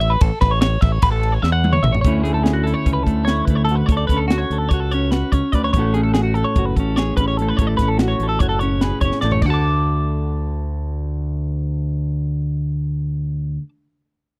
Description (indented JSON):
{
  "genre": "math rock and midwest emo",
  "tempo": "293 BPM (eighths)",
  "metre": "9/8",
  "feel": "straight",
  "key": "D lydian",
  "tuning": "A4 = 440 Hz",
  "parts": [
    { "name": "twelve-string electric guitar", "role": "arpeggios", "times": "0.0-13.7 s", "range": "F#4 to D6", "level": "-25 LUFS", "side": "equal", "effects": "none" },
    { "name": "growling fingered electric bass", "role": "bass", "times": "0.0-13.6 s", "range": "F#1 to E2", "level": "-23 LUFS", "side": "equal", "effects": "overdrive" },
    { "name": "crisp fusion drum kit", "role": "drums", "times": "0.0-9.5 s", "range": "crash cymbal, hi-hat, kick drum, ride cymbal, snare drum, toms", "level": "-20 LUFS", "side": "equal", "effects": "none" },
    { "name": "semi-hollow electric guitar", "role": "accompaniment", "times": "2.0-13.7 s", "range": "D2 to B4", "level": "-24 LUFS", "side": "equal", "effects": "spring reverb" }
  ],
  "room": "little or no reverb",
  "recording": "dry, close 1970s-style studio recording",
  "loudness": "-19 LUFS",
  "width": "mono",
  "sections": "0.0-2.0 A section; 2.0-9.4 B section; 9.4-13.1 C section",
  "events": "drum fill 1.4-2.0, 9.1-9.4",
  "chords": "0.2 A; 2.0 Dmaj9; 5.7 A6; 9.4 D"
}